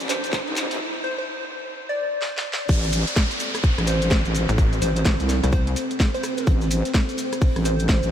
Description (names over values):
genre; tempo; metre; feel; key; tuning
bass house; 127 BPM; 4/4; swing 62% on 16ths; A minor; A4 = 438 Hz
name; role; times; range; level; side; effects
dark analog pad; sustained chords; 0.0-8.1 s; C4 to C5; -31 LUFS; right 1 dB; chorus, sidechain pumping
wobble bass; bass; 0.0-8.1 s; A1 to C2; -23 LUFS; equal; chorus, sidechain pumping, high-pass filter
garage drum kit; drums; 0.0-8.1 s; crash cymbal, handclaps, hi-hat, rim click, snare drum; -28 LUFS; equal; high-pass filter on snare, high-pass filter on hats, high-pass filter on cymbals, high-pass filter on room
maracas; percussion; 0.0-8.1 s; none; -37 LUFS; left 2 dB; none
riser and downlifter; sound effects; 0.0-6.5 s; none; -31 LUFS; equal; none
muted studio string section; texture; 0.0-0.8 s; none; barely audible; none; none
plucky unison lead; melody; 0.1-8.1 s; C5 to D5; -30 LUFS; left 1 dB; diffuse ambient delay
crunchy breakbeat drum kit; drums; 0.1-8.0 s; none; barely audible; none; none
electronic kick drum; drums; 0.3-8.0 s; none; -20 LUFS; equal; none
pulsing pluck wobble bass; bass; 4.5-5.7 s; A1 to C2; -22 LUFS; equal; chorus, overdrive, sidechain pumping
room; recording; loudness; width
moderate huge ambient reverb, RT60 7.1 s; dreamy mix soaked in reverb, high-pass filter; -20 LUFS; side -10 dB against mid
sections
0.0-2.7 A section; 2.7-8.1 B section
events
build-up 0.0-2.7; drum fill 0.0-0.8, 2.2-2.7; riser 0.0-0.8; break 0.8-2.7; drop 2.7-8.1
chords
0.0 Amadd9